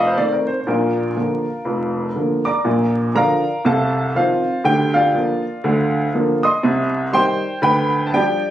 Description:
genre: jazz, stride piano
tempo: 120 BPM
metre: 4/4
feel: swing 58% on 8ths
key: Bb major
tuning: A4 = 442 Hz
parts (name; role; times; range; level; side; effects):
- clear upright piano; solo; 0.0-8.5 s; F1 to Eb6; -16 LUFS; equal; none
room: moderate small room reverb, RT60 0.5 s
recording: recorded on a phone in the room, studio reverb, vinyl crackle, compression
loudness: -16 LUFS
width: side -12 dB against mid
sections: 0.0-2.6 A section; 2.6-8.5 B section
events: none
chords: 0.0 F7; 0.7 Bb; 3.6 F7/C; 4.6 Bb/D; 6.6 Cm; 7.6 G7/D

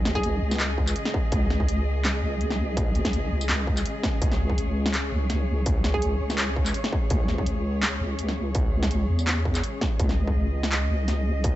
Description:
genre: half-time drum and bass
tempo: 166 BPM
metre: 4/4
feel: swing 54% on 16ths, half-time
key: unclear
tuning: A4 = 439 Hz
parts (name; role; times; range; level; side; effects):
- warm symphonic cello section; sustained chords; 0.0-11.6 s; C#3 to D#5; -32 LUFS; left 1 dB; sidechain pumping
- deep soft wobble bass; bass; 0.0-11.6 s; C#2 to E2; -25 LUFS; equal; chorus
- drum and bass drum kit; drums; 0.1-11.5 s; handclaps, hi-hat, snare drum, tambourine; -29 LUFS; equal; overdrive
- hollow square pluck; melody; 0.2-0.5, 5.9-6.3 s; G#4; -32 LUFS; right 1 dB; chorus, digital delay
- electronic kick drum; drums; 0.2-11.5 s; none; -26 LUFS; equal; distortion
room: light reverb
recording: nothing above 7.9 kHz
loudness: -22 LUFS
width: side -14 dB against mid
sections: 0.0-11.6 A section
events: none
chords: 0.0 C#5

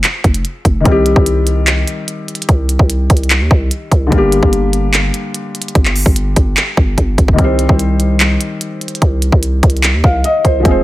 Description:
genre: hip hop, trap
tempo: 147 BPM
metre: 4/4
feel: half-time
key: C minor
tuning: A4 = 443 Hz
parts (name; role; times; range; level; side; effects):
- felt-muted upright piano; accompaniment; 0.0-10.8 s; D3 to F5; -17 LUFS; left 2 dB; low-pass filter
- growling 808-style bass; bass; 0.0-10.8 s; F1 to Eb2; -14 LUFS; equal; none
- minimal click drum kit; drums; 0.0-10.7 s; handclaps, hi-hat, kick drum; -13 LUFS; equal; overdrive
room: little or no reverb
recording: none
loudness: -10 LUFS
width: side -16 dB against mid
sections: 0.9-10.8 A section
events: drum fill 7.0-7.4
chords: 0.0 Fm; 0.9 Cm; 4.1 Gm; 7.4 Cm

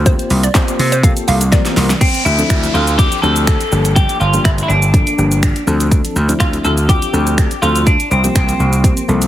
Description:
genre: dance-pop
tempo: 123 BPM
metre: 4/4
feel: straight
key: D minor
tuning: A4 = 439 Hz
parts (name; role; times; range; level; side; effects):
- gritty slap bass; bass; 0.0-9.3 s; G1 to C3; -15 LUFS; equal; overdrive, sidechain pumping
- hollow square pluck; melody; 0.1-1.9 s; C5 to F5; -21 LUFS; right 1 dB; chorus, ping-pong delay
- soft electric-piano-like synth keys; accompaniment; 0.1-9.3 s; F3 to C5; -21 LUFS; left 2 dB; chorus, sidechain pumping
- pop drum kit; drums; 0.1-9.3 s; crash cymbal, finger snaps, handclaps, hi-hat, kick drum, shaker, snare drum; -14 LUFS; equal; none
- twelve-string electric guitar; melody; 2.0-9.0 s; C4 to A4; -18 LUFS; equal; ping-pong delay
- downlifter; sound effects; 2.0-5.9 s; none; -26 LUFS; equal; none
room: light reverb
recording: heavily compressed radio sound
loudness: -11 LUFS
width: side -12 dB against mid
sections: 0.0-2.0 A section; 2.0-9.3 B section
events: drop 0.0-2.0; drum fill 1.5-2.0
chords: 0.1 C7sus4; 2.0 Dm7; 3.7 Gm7; 5.7 Dm7; 7.9 C7sus4

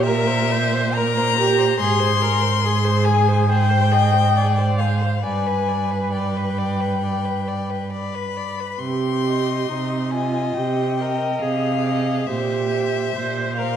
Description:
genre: classical, slow romantic movement for string quartet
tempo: 69 BPM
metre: 4/4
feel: rubato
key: C minor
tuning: A4 = 440 Hz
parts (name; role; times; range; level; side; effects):
- warm violin; melody; 0.0-13.8 s; E5 to C6; -23 LUFS; left 9 dB; none
- rich violin; second line; 0.0-13.8 s; Ab4 to Eb5; -28 LUFS; left 2 dB; none
- clear viola; accompaniment; 0.0-13.8 s; Eb4 to Eb5; -25 LUFS; right 4 dB; none
- clear cello; bass; 0.0-13.8 s; G2 to C3; -22 LUFS; right 3 dB; none
room: wet recital hall reverb, RT60 1.7 s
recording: dark, warm production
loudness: -18 LUFS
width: side -9 dB against mid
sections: 0.0-13.8 A section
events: none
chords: 0.0 C7/Bb; 1.8 Abmaj9#11; 5.2 G; 8.8 Cm; 12.3 C7/Bb

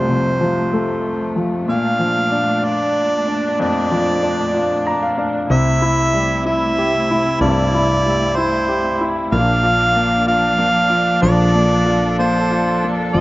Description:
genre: six-eight pop ballad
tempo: 63 BPM (dotted quarters)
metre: 6/8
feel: straight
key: unclear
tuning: A4 = 439 Hz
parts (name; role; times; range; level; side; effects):
- warm harmonica; melody; 0.0-13.2 s; C5 to F5; -19 LUFS; right 1 dB; slapback echo
- clear baby grand piano; accompaniment; 0.0-13.2 s; C2 to Bb5; -19 LUFS; left 2 dB; slapback echo
- rich studio string section; sustained chords; 0.0-13.2 s; F2 to A4; -22 LUFS; right 1 dB; none
- woody fretless electric bass; bass; 5.5-13.2 s; F1 to C2; -22 LUFS; equal; none
room: little or no reverb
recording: recorded outdoors, with no room sound, nothing above 7.8 kHz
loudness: -14 LUFS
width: side -18 dB against mid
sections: 0.0-5.5 A section; 5.5-13.2 B section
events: grand piano fill 4.5-5.5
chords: 0.0 F; 1.7 Bbmaj7; 5.5 C6; 9.3 Bb

